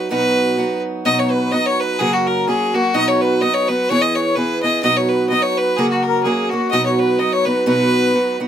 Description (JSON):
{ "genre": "celtic folk, Celtic polka", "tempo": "127 BPM", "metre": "2/4", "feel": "swing 56% on 8ths", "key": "B major", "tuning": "A4 = 442 Hz", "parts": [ { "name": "bright fiddle", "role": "melody", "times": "0.0-8.4 s", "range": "F#4 to D#5", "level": "-18 LUFS", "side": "left 1 dB", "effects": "none" }, { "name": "picked steel-string acoustic guitar", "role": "accompaniment", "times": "0.0-8.5 s", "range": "F#2 to G#4", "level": "-18 LUFS", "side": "right 2 dB", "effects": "none" }, { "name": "mellow accordion", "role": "second line", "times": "1.1-8.4 s", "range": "F#4 to D#5", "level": "-24 LUFS", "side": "left 3 dB", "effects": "none" } ], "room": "light reverb", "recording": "close, detailed microphones", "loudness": "-15 LUFS", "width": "side -9 dB against mid", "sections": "0.0-1.1 A section; 1.1-8.5 A section", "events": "none", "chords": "0.0 B; 2.0 F#; 3.0 B; 3.9 E; 4.8 B; 5.8 F#; 6.7 B" }